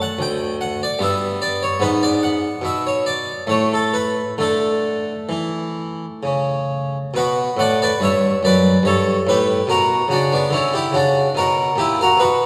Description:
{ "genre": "classical, baroque-style suite movement for harpsichord", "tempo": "64-75 BPM", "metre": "3/4", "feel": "rubato", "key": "D major, B minor from 7.1 s", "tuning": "A4 = 440 Hz", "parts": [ { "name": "harpsichord", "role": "solo", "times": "0.0-12.5 s", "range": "D2 to G5", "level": "-19 LUFS", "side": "equal", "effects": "none" } ], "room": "wet concert hall reverb, RT60 2.1 s", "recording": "heard from further back in the room", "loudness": "-19 LUFS", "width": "mono", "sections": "0.0-7.1 A section; 7.1-12.5 A section", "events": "none", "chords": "0.0 D; 1.0 G; 1.8 G#m7b5; 3.5 N.C.; 4.4 D5; 7.1 Bm; 9.7 F#7/B", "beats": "0.18 0.99 | 1.79 2.62 3.48 | 4.38 5.29 6.23 | 7.14 7.99 8.83 | 9.67 10.51 11.36 | 12.19" }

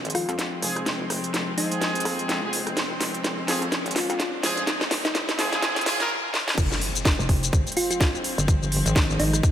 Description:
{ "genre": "bass house", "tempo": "126 BPM", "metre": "4/4", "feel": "swing 58% on 16ths", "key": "F minor", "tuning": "A4 = 443 Hz", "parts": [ { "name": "warm chamber string section", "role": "sustained chords", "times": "0.0-9.5 s", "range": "F3 to C4", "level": "-33 LUFS", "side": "left 2 dB", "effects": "sidechain pumping" }, { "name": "metallic wobble bass", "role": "bass", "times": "0.0-9.4 s", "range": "F1 to F2", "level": "-29 LUFS", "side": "equal", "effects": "chorus, tube saturation, sidechain pumping, high-pass filter" }, { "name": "garage drum kit", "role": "drums", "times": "0.0-9.5 s", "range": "crash cymbal, hi-hat, rim click, shaker, snare drum", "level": "-26 LUFS", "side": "equal", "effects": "none" }, { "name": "riser and impact", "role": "sound effects", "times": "1.5-8.5 s", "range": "none", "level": "-34 LUFS", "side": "equal", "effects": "none" }, { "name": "thumb-piano-like synth pluck", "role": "melody", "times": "0.1-9.5 s", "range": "Eb4 to F4", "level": "-30 LUFS", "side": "equal", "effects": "chorus" }, { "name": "bright horn section", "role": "stabs", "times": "0.6-6.1 s", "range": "F3 to Bb4", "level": "-30 LUFS", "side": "right 1 dB", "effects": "sidechain pumping, low-pass filter, digital delay" }, { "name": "electronic kick drum", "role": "drums", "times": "6.6-9.5 s", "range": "none", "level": "-22 LUFS", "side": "equal", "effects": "none" } ], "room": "moderate lush hall reverb, RT60 2.3 s", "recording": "high-pass filter", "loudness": "-22 LUFS", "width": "side -10 dB against mid", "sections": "0.0-6.6 A section; 6.6-9.5 B section", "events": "build-up 0.0-6.6; drum fill 0.0-6.1, 6.3; filter sweep on horn section 0.0-6.6; riser 1.5-6.1; stop 6.1-6.6; drop 6.6-9.5; impact 6.6-8.5", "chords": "0.0 Fm", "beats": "0.39 | 0.86 1.34 1.81 2.29 | 2.77 3.24 3.72 4.20 | 4.67 5.15 5.62 6.10 | 6.58 7.05 7.53 8.01 | 8.48 8.96 9.43" }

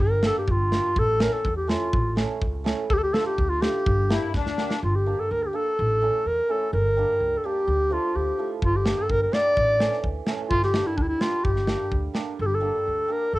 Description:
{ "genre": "klezmer", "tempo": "126 BPM", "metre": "2/4", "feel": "straight", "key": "G dorian sharp4", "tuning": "A4 = 438 Hz", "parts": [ { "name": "warm clarinet", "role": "melody", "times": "0.0-13.4 s", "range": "D4 to D5", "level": "-23 LUFS", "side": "equal", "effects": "cassette tape" }, { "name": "upright bass", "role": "bass", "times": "0.0-13.4 s", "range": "G1 to E2", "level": "-27 LUFS", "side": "equal", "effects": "none" }, { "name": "hammered dulcimer", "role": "accompaniment", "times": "0.2-13.4 s", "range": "E3 to A4", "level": "-33 LUFS", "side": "right 7 dB", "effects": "none" }, { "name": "modern studio drum kit", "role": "drums", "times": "0.2-4.8, 8.6-12.3 s", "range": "kick drum, snare drum", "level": "-27 LUFS", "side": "equal", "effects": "cassette tape" }, { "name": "accordion", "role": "second line", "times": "4.1-4.8 s", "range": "D4 to E4", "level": "-28 LUFS", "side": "left 6 dB", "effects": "light tremolo tuning" } ], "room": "moderate studio reverb, RT60 0.6 s", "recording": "home recording on cassette", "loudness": "-21 LUFS", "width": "side -18 dB against mid", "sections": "0.0-4.8 A section; 4.8-12.4 B section", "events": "speeding up 0.0-13.4; drum fill 4.3-4.8", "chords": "0.0 Gm; 1.0 A; 2.9 Dm; 3.9 Gm; 5.8 A; 6.7 Gm; 7.7 Dm; 8.6 Gm; 9.6 A; 10.5 Gm", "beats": "| 0.00 0.48 | 0.97 1.45 | 1.93 2.42 | 2.90 3.38 | 3.86 4.34 | 4.82 5.30 | 5.78 6.25 | 6.73 7.21 | 7.68 8.15 | 8.63 9.10 | 9.57 10.04 | 10.52 10.99 | 11.46 11.93 | 12.39 12.86 | 13.33" }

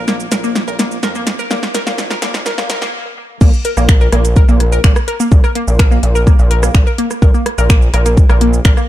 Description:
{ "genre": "melodic techno", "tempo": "126 BPM", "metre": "4/4", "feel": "straight", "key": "unclear", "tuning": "A4 = 442 Hz", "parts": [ { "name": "analog pluck", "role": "arpeggios", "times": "0.0-8.9 s", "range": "Bb3 to Bb4", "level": "-19 LUFS", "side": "left 1 dB", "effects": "chorus, sidechain pumping, tape echo" }, { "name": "gritty driven synth bass", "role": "bass", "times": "0.0-8.7 s", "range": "Bb1 to F2", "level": "-15 LUFS", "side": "equal", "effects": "distortion, sidechain pumping" }, { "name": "deep house drum kit", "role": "drums", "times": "0.1-8.9 s", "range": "crash cymbal, finger snaps, hi-hat, rim click, shaker, snare drum", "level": "-19 LUFS", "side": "equal", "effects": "overdrive" }, { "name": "electronic kick drum", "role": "drums", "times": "3.4-8.7 s", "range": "none", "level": "-9 LUFS", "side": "equal", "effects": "none" } ], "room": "digital ambience", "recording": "dark, warm production, high-pass filter", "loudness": "-10 LUFS", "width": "side -14 dB against mid", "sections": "0.0-3.4 A section; 3.4-8.9 B section", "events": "build-up 0.0-3.4; drum fill 0.0-2.9; filter sweep 0.0-3.4; stop 2.9-3.4; drop 3.4-8.9", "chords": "0.0 Bb5", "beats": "0.08 0.56 1.03 | 1.51 1.98 2.46 2.94 | 3.41 3.89 4.36 4.84 | 5.32 5.79 6.27 6.75 | 7.22 7.70 8.17 8.65" }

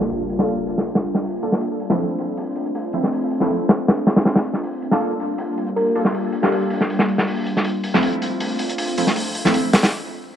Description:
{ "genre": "drum and bass, jungle", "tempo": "159 BPM", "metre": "4/4", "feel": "straight", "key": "G minor", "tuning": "A4 = 436 Hz", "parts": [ { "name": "warbly tape-like pad", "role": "sustained chords", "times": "0.0-9.9 s", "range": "G3 to F4", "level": "-24 LUFS", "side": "left 1 dB", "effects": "chorus, built-in reverb" }, { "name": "crunchy breakbeat drum kit", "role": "drums", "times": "0.0-9.9 s", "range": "hi-hat, snare drum", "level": "-20 LUFS", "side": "equal", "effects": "high-pass filter on kick, high-pass filter on hats, high-pass filter on snare, high-pass filter on room" }, { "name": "orchestra-hit-like synth stab", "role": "stabs", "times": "0.4-9.6 s", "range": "F3 to A4", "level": "-24 LUFS", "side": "right 1 dB", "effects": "built-in reverb, dub echo" }, { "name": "bell-like FM electric piano", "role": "melody", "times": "5.8-7.0 s", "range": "G4 to Bb4", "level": "-24 LUFS", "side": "left 1 dB", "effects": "chorus, dub echo" } ], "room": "light reverb, studio reverb", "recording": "vinyl crackle, low-pass filter", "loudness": "-18 LUFS", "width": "side -9 dB against mid", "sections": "0.0-10.4 A section", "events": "filter sweep 0.0-10.4; break 9.9-10.4", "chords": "0.0 Gm7; 1.6 Dm7; 4.6 Gm7; 7.7 Dm7", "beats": "| 0.11 0.48 0.86 1.24 | 1.62 1.99 2.37 2.75 | 3.12 3.50 3.88 4.26 | 4.63 5.01 5.39 5.77 | 6.14 6.52 6.90 7.28 | 7.65 8.03 8.41 8.79 | 9.16 9.54" }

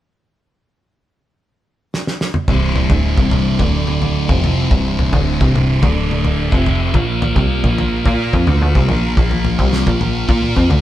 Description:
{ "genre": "psychedelic rock", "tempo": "108 BPM", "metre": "4/4", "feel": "straight", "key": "C mixolydian", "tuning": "A4 = 440 Hz", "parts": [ { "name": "damped 70s drum kit", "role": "drums", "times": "1.9-10.8 s", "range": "kick drum, snare drum, toms", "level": "-18 LUFS", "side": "equal", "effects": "none" }, { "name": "combo organ", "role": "sustained chords", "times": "2.5-10.8 s", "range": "G3 to F5", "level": "-26 LUFS", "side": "right 4 dB", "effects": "none" }, { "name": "thick fuzz guitar", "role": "riff", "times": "2.5-10.8 s", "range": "C2 to Bb4", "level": "-18 LUFS", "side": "equal", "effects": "distortion, phaser" }, { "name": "plucky analog bass", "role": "bass", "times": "2.5-10.8 s", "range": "C1 to Bb2", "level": "-18 LUFS", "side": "equal", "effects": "none" } ], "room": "moderate stone room reverb, RT60 1.2 s", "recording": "band playing live in one room", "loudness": "-13 LUFS", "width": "side -13 dB against mid", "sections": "0.2-2.5 A section; 2.5-10.8 B section", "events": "drum fill 1.9-2.5", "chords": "0.2 N.C.; 2.5 C; 3.6 D5; 4.3 C; 5.8 D5; 6.5 C; 6.9 Bb5", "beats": "| 0.25 0.81 1.36 1.92 | 2.48 3.03 3.59 4.15 | 4.71 5.26 5.82 6.38 | 6.94 7.50 8.05 8.61 | 9.17 9.73 10.28" }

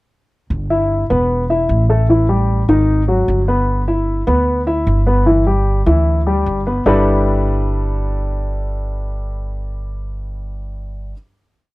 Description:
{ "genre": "Afro-Cuban jazz", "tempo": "150 BPM", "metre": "4/4", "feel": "straight", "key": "G major", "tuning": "A4 = 441 Hz", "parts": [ { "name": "upright bass", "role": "bass", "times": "0.5-11.1 s", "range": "E1 to D2", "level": "-17 LUFS", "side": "equal", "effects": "none" }, { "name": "warm concert grand piano", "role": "accompaniment", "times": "0.7-11.1 s", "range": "Eb3 to E5", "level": "-16 LUFS", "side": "left 1 dB", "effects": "none" } ], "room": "little or no reverb", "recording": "dry, close 1970s-style studio recording", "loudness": "-14 LUFS", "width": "side -20 dB against mid", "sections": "0.5-6.9 A section; 6.9-10.1 final chord", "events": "none", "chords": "0.5 G6; 1.3 E5; 2.1 A5; 2.9 Ab5; 3.7 G6; 6.9 G69", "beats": "| 0.51 0.90 1.30 1.70 | 2.09 2.49 2.88 3.28 | 3.68 4.08 4.47 4.87 | 5.27 5.67 6.07 6.47 | 6.87 7.27 7.67 8.07 | 8.47 8.87 9.27 9.68" }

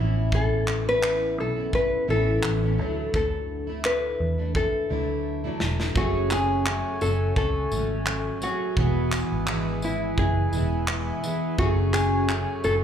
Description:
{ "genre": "acoustic pop", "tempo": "85 BPM", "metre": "4/4", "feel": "swing 55% on 16ths", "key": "unclear", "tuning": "A4 = 438 Hz", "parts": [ { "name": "fingerpicked plugged-in steel-string acoustic guitar", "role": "accompaniment", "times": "0.0-12.8 s", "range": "E2 to G#4", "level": "-28 LUFS", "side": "equal", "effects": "double-tracked left and right, slapback echo" }, { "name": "vintage muted fingered electric bass", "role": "bass", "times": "0.0-12.8 s", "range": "E1 to E2", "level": "-27 LUFS", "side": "equal", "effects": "none" }, { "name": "nylon-string guitar", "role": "melody", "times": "0.3-12.7 s", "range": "E4 to B4", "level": "-27 LUFS", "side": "left 2 dB", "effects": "slapback echo" }, { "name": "modern studio drum kit", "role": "drums", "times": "0.3-12.8 s", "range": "handclaps, kick drum, snare drum, tambourine", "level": "-29 LUFS", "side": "equal", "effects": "none" }, { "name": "pedal harmonium", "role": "sustained chords", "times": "6.0-12.8 s", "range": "A3 to G#5", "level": "-35 LUFS", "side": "right 1 dB", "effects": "none" } ], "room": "light reverb, studio reverb", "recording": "live gig heard through the venue's PA, club reverb", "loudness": "-22 LUFS", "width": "side -9 dB against mid", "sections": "0.0-6.0 A section; 6.0-12.8 B section", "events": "drum fill 5.3-6.0", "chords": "0.0 Aadd9; 2.8 Dadd9; 6.0 F#madd9; 8.8 E; 11.6 F#madd9", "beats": "| 0.32 1.02 1.73 2.43 | 3.14 3.84 4.55 5.25 | 5.96 6.66 7.36 8.07 | 8.77 9.47 10.18 10.88 | 11.59 12.29" }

